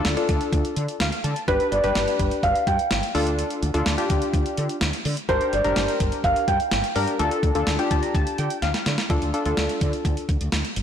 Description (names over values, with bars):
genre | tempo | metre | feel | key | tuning
synth-pop | 126 BPM | 4/4 | straight | D minor | A4 = 437 Hz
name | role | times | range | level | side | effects
warm analog keys | accompaniment | 0.0-10.2 s | D4 to Bb5 | -25 LUFS | left 2 dB | chorus
woody fretless electric bass | bass | 0.0-10.8 s | G1 to D3 | -26 LUFS | equal | ensemble chorus
clean 12-bit digital drum machine | drums | 0.0-10.8 s | hi-hat, kick drum, snare drum | -26 LUFS | equal | none
dark baby grand piano | second line | 1.5-6.6 s | B4 to G5 | -23 LUFS | right 1 dB | analog delay
room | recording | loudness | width
moderate lush hall reverb, RT60 2.2 s | blown-out, overdriven recording, overdrive | -20 LUFS | side -8 dB against mid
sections
0.0-9.1 A section; 9.1-10.8 B section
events
synth keys fill 0.8-1.5, 7.7-9.1; drum fill 8.6-9.1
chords
0.0 Dm; 1.5 G; 3.1 Dm; 5.3 Gm; 7.2 Dm